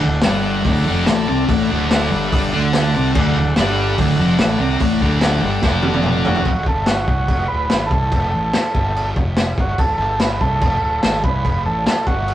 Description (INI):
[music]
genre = garage rock duo or trio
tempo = 144 BPM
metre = 4/4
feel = straight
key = D mixolydian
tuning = A4 = 441 Hz
[part]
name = combo organ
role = sustained chords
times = 0.0-6.4 s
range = A4 to A5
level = -25 LUFS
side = equal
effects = none
[part]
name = thick fuzz guitar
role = riff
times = 0.0-6.5 s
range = D2 to D4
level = -17 LUFS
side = equal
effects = distortion
[part]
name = fuzz fingered electric bass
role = bass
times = 0.1-12.3 s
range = D1 to D2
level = -22 LUFS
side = equal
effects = overdrive
[part]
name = crunchy breakbeat drum kit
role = drums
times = 0.2-12.3 s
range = crash cymbal, hi-hat, kick drum, snare drum, toms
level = -19 LUFS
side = equal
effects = none
[part]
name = overdriven combo organ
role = melody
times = 6.3-12.3 s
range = F#4 to B4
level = -21 LUFS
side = right 2 dB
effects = none
[sound]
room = moderate studio reverb, RT60 0.6 s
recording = rough rehearsal-room recording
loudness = -15 LUFS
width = side -12 dB against mid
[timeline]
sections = 0.0-6.5 A section; 6.5-12.3 B section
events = transistor combo organ fill 2.3-3.1; drum fill 5.6-6.5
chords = 0.0 D